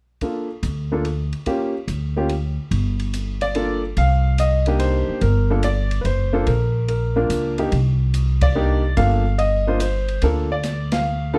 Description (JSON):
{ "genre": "jazz piano trio", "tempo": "144 BPM", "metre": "3/4", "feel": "swing 67% on 8ths", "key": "G minor", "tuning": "A4 = 438 Hz", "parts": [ { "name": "warm concert grand piano", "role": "melody", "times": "0.2-11.4 s", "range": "Bb3 to F5", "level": "-24 LUFS", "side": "equal", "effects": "none" }, { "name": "open jazz drum kit", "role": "drums", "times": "0.2-11.0 s", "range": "hi-hat, kick drum, ride cymbal, snare drum", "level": "-31 LUFS", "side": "equal", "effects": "none" }, { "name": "upright bass", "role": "bass", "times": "0.6-11.4 s", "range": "F#1 to D2", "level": "-22 LUFS", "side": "equal", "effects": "none" } ], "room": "little or no reverb", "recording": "dark, warm production, faint mains hum", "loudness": "-21 LUFS", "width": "mono", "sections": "0.2-2.7 A section; 2.7-11.4 B section", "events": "band accent 8.3, 10.8", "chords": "0.2 Dm; 2.7 Gm; 4.0 Cm9; 5.2 Gm7; 7.7 Cm9; 9.0 Gm9", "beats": "| 0.21 0.63 1.05 | 1.47 1.88 2.30 | 2.72 3.13 3.55 | 3.97 4.39 4.80 | 5.22 5.64 6.05 | 6.47 6.89 7.30 | 7.72 8.14 8.56 | 8.97 9.39 9.81 | 10.22 10.64 11.06" }